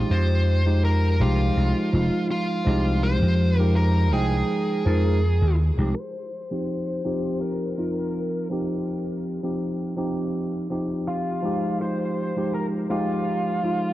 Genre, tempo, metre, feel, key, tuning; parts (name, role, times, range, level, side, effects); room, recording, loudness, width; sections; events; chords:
vaporwave; 82 BPM; 4/4; swing 53% on 16ths; F minor; A4 = 439 Hz
smooth overdriven lead guitar; melody; 0.0-13.9 s; F4 to C5; -29 LUFS; equal; tape echo
tine electric piano; accompaniment; 0.0-13.9 s; F3 to G5; -25 LUFS; equal; wide subtle chorus
vintage slap bass; bass; 0.0-5.9 s; F1 to F2; -20 LUFS; equal
light reverb; cassette tape, low-pass filter; -21 LUFS; side -15 dB against mid
0.0-6.0 A section; 6.0-13.9 B section
filter sweep 6.0-13.9
0.1 Fm9